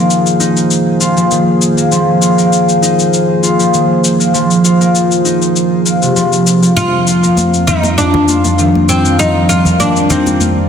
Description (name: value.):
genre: organic downtempo.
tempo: 99 BPM.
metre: 4/4.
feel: swing 53% on 16ths.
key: F dorian.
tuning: A4 = 440 Hz.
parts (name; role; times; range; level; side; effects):
warm analog pad; sustained chords; 0.0-10.7 s; F2 to D5; -15 LUFS; right 3 dB; chorus.
concert harp; arpeggios; 0.0-10.7 s; C3 to F4; -12 LUFS; left 1 dB; low-pass filter, digital delay.
cabasa; drums; 0.1-10.5 s; none; -18 LUFS; left 5 dB; none.
oud; melody; 6.8-10.7 s; C4 to F4; -13 LUFS; left 2 dB; digital delay.
congas; percussion; 7.4-10.5 s; none; -20 LUFS; equal; none.
room: moderate concert hall reverb, RT60 2.1 s.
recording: dense, heavily limited modern master.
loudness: -9 LUFS.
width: side -7 dB against mid.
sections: 0.0-10.7 A section.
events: none.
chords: 0.0 Fm; 6.8 Ebmaj7/F.